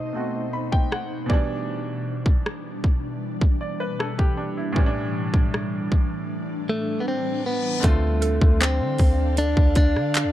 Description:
contemporary R&B; 78 BPM; 4/4; straight; D dorian; A4 = 440 Hz
direct-recorded clean electric guitar; melody; 0.0-1.3, 6.7-10.3 s; A3 to D#5; -25 LUFS; equal; ping-pong delay
bright baby grand piano; accompaniment; 0.0-10.3 s; A2 to B5; -30 LUFS; right 1 dB
ethereal airy pad; sustained chords; 0.0-10.3 s; A2 to F5; -30 LUFS; equal; ensemble chorus, built-in reverb
trap drum kit; drums; 0.7-10.3 s; handclaps, hi-hat, kick drum, rim click; -20 LUFS; equal
reverse cymbal; sound effects; 7.2-7.8 s; -33 LUFS; left 8 dB
soft 808-style bass; bass; 7.8-10.3 s; D2 to D3; -22 LUFS; equal
mallet-like synth pluck; texture; 8.2-10.3 s; A4; -36 LUFS; right 10 dB
little or no reverb; dark, warm production; -20 LUFS; side -13 dB against mid
0.0-7.8 A section; 7.8-10.3 B section
grand piano fill 0.1-1.7; break 6.3-7.8; reverse cymbal 7.2-7.8
0.0 B7b9; 1.3 Em7/B; 4.8 A7sus4; 7.8 Dm7

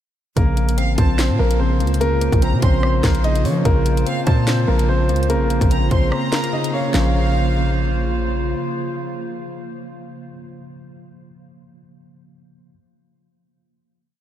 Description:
hip hop, drill; 146 BPM; 4/4; half-time; Bb minor; A4 = 440 Hz
dark baby grand piano; melody; 0.4-8.1 s; Bb3 to Eb5; -24 LUFS; left 1 dB
tine electric piano; accompaniment; 0.4-12.7 s; Db3 to C5; -25 LUFS; equal; overdrive, fast stereo tremolo
warbly tape-like pad; sustained chords; 0.4-10.3 s; Db3 to C5; -28 LUFS; right 1 dB; chorus, built-in reverb
hard-hitting 808-style bass; bass; 0.4-8.5 s; A1 to F3; -19 LUFS; equal
drill drum kit; drums; 0.4-7.0 s; handclaps, hi-hat, kick drum, rim click, snare drum; -22 LUFS; equal
warm symphonic violin section; second line; 0.8-8.1 s; F5 to C6; -29 LUFS; right 2 dB; analog delay
light reverb; -16 LUFS; side -11 dB against mid
0.4-6.9 hook; 6.9-10.2 final chord
break 6.1-6.9
0.4 Bbmadd9

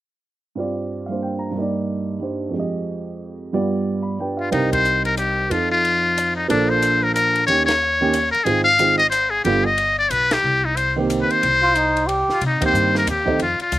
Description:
jazz, small-group swing and bop; 183 BPM; 3/4; swing 62% on 8ths; C minor; A4 = 439 Hz
dark baby grand piano; accompaniment; 0.6-13.4 s; F2 to B5; -22 LUFS; right 3 dB
trumpet with metal mute; melody; 4.4-13.8 s; D4 to F5; -18 LUFS; left 2 dB
upright bass; bass; 4.5-13.8 s; G1 to C3; -26 LUFS; left 1 dB
compact cocktail drum kit; drums; 4.5-13.8 s; hi-hat, kick drum, ride cymbal, snare drum; -30 LUFS; left 1 dB
trombone with metal mute; second line; 11.6-12.4 s; Eb4 to G4; -20 LUFS; right 1 dB
little or no reverb; recorded outdoors, with no room sound; -17 LUFS; side -15 dB against mid
0.6-4.5 A section; 4.5-12.4 B section; 12.4-13.8 B section
band accent 4.7, 7.6, 10.3, 12.6
0.6 G7sus4; 1.6 Cm7/G; 2.5 Fm7; 3.5 G7; 4.5 Cm7; 5.5 F7; 6.5 Bbmaj7; 7.5 Eb7; 8.5 Ab6; 9.4 G7; 10.4 Cm7

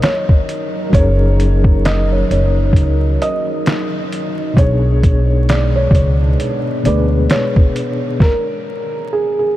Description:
lo-fi hip hop; 66 BPM; 4/4; swing 58% on 16ths; A4 = 440 Hz
felt-muted upright piano; melody; 0.0-9.6 s; G#4 to D#5; -20 LUFS; right 1 dB; low-pass filter, ping-pong delay
overdriven reed electric piano; accompaniment; 0.0-8.2 s; B2 to C#5; -22 LUFS; left 2 dB; fast tremolo, low-pass filter
deep dark ambient pad; sustained chords; 0.0-8.2 s; F#3 to A#4; -24 LUFS; equal; chorus, built-in reverb, low-pass filter
lo-fi sampler-style drum kit; drums; 0.0-8.5 s; handclaps, hi-hat, kick drum, snare drum; -16 LUFS; equal
upright bass; bass; 0.9-7.3 s; F#1 to D2; -14 LUFS; equal
moderate huge ambient reverb, RT60 7.9 s; dreamy mix soaked in reverb, vinyl crackle; -12 LUFS; side -14 dB against mid
0.0-9.6 A section
stop 8.2-9.6
0.0 F#6; 4.6 Bm6; 8.2 N.C.

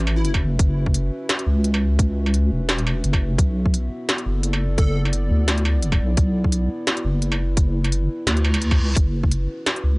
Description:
half-time drum and bass; 172 BPM; 4/4; swing 55% on 16ths, half-time; A4 = 440 Hz
dark analog pad; sustained chords; 0.0-10.0 s; B3 to E5; -31 LUFS; equal; chorus, sidechain pumping
deep soft wobble bass; bass; 0.0-10.0 s; E1 to D2; -20 LUFS; equal; chorus
industrial drum kit; drums; 0.1-9.8 s; hi-hat, snare drum, struck metal; -24 LUFS; equal
plucky unison lead; melody; 0.2-0.3, 4.8-5.0 s; E4 to A4; -33 LUFS; left 2 dB; ensemble chorus, analog delay
electronic kick drum; drums; 0.3-9.3 s; -18 LUFS; equal; overdrive
reverse cymbal; sound effects; 8.4-9.0 s; -33 LUFS; equal
little or no reverb; dry, gritty hardware recording, cassette tape, nothing above 10.9 kHz; -18 LUFS; side -27 dB against mid
0.0-10.0 A section
reverse cymbal 8.4-9.0
0.0 F#m7; 3.4 Bm; 9.0 F#7(no3)

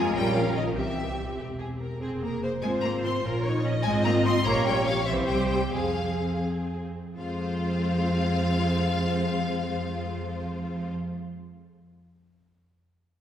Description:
quick classical-period movement for string orchestra; 80-99 BPM (dotted quarters); 6/8; straight; F minor; A4 = 440 Hz
rich studio violin section; melody; 0.0-10.9 s; Eb5 to C6; -33 LUFS; left 4 dB
warm studio violin section; second line; 0.0-10.9 s; F4 to Eb5; -32 LUFS; left 1 dB
warm studio viola section; accompaniment; 0.0-10.9 s; Ab3 to Ab4; -30 LUFS; equal
dark studio double bass section; bass; 0.0-10.9 s; E1 to F2; -31 LUFS; right 1 dB
rich studio cello section; bass; 0.0-10.9 s; Eb3 to C4; -30 LUFS; right 1 dB
wet concert hall reverb, RT60 1.9 s; heard from further back in the room; -24 LUFS; side -10 dB against mid
0.0-7.2 A section; 7.2-10.1 B section
slowing down 3.8-7.2
0.1 Bbm; 0.8 C; 2.0 Fm; 2.6 Fm/Ab; 3.2 Bbm; 3.8 Fm/Ab; 4.5 Gdim/Bb; 5.1 C; 5.7 Fm

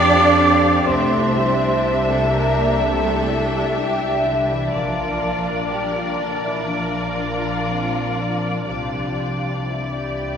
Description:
cinematic, emotional film score for orchestra; 62 BPM; 4/4; rubato; C mixolydian; A4 = 439 Hz
warm symphonic violin section; melody; 0.0-10.4 s; D5 to F5; -26 LUFS; left 2 dB
clear clarinet; second line; 0.0-10.4 s; C4 to D4; -33 LUFS; left 2 dB
dark cor anglais; second line; 0.0-10.4 s; D5 to G5; -28 LUFS; right 1 dB
mellow hollow concert flute; second line; 0.0-10.4 s; D5 to D6; -25 LUFS; equal
warm symphonic violin section; second line; 0.0-10.4 s; D4 to D5; -26 LUFS; left 1 dB
rich studio viola section; accompaniment; 0.0-10.4 s; C4 to Bb4; -28 LUFS; equal
warm French horn section; sustained chords; 0.0-10.4 s; G3 to D4; -29 LUFS; left 2 dB
concert harp; arpeggios; 0.0-10.4 s; Bb2 to F5; -30 LUFS; left 4 dB
rich symphonic cello section; bass; 0.0-10.4 s; D3 to D4; -25 LUFS; right 3 dB
rich symphonic double bass section; bass; 0.0-10.4 s; Bb1 to F2; -26 LUFS; right 1 dB
wet concert hall reverb, RT60 2.2 s; heard from further back in the room; -17 LUFS; side -8 dB against mid
0.0-10.4 A section
0.0 Fsus2; 0.9 Cadd9; 4.7 Bb; 8.7 Cadd9

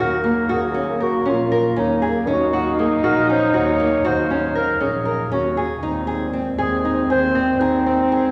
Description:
contemporary instrumental, chamber music in an uneven meter; 236 BPM (eighths); 7/8; straight; Eb dorian; A4 = 440 Hz
mellow clarinet; melody; 0.0-8.3 s; Eb4 to Db5; -25 LUFS; equal
warm French horn; second line; 0.0-8.3 s; Bb3 to Eb4; -23 LUFS; equal
dark woodwind section; sustained chords; 0.0-8.3 s; Bb2 to F5; -35 LUFS; equal
nylon-string guitar; arpeggios; 0.0-8.3 s; Bb3 to Bb4; -25 LUFS; equal
warm double bass; bass; 0.0-8.2 s; Bb1 to Eb2; -31 LUFS; equal
wet concert hall reverb, RT60 2.4 s; -19 LUFS; mono
0.0-8.3 A section
0.0 Ebm7; 5.8 Abadd9/Eb

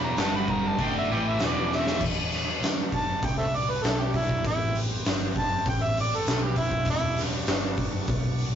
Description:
blues rock power trio and southern rock; 99 BPM; 4/4; straight; E minor; A4 = 444 Hz
overdriven harmonica; melody; 0.0-7.2 s; E4 to B5; -28 LUFS; right 1 dB
overdriven tonewheel organ; sustained chords; 0.0-8.6 s; G3 to G4; -39 LUFS; right 2 dB; slow rotary speaker
cranked stack guitar; riff; 0.0-2.0 s; E2 to D4; -27 LUFS; equal; overdrive
vintage muted fingered electric bass; bass; 0.0-8.6 s; E1 to E2; -31 LUFS; equal
oversized low-tuned drum kit; drums; 0.2-8.5 s; crash cymbal, hi-hat, kick drum, snare drum; -27 LUFS; equal
moderate studio ambience, RT60 0.5 s; rough rehearsal-room recording, warm saturation, nothing above 7.6 kHz; -24 LUFS; side -9 dB against mid
0.0-2.0 A section; 2.0-8.6 B section
drum fill 1.7-2.0; harmonica solo 2.0-8.6
0.2 G5; 0.8 Em; 2.0 Em7; 4.4 Am7; 6.9 Em7

